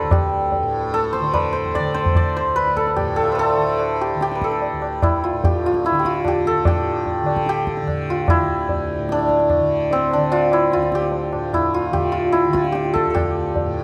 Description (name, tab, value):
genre	indian classical, Hindustani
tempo	147 BPM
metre	4/4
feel	straight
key	D raga bhimpalasi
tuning	A4 = 440 Hz
part	santur	melody	0.0-13.8 s	C4 to A5	-21 LUFS	equal	none
part	tanpura	drone	0.0-13.8 s	D2 to D3	-29 LUFS	equal	none
part	tabla	percussion	0.1-13.7 s	none	-26 LUFS	equal	none
room	light reverb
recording	close, detailed microphones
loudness	-20 LUFS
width	mono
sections	0.0-6.7 A section; 6.7-13.8 B section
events	none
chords	none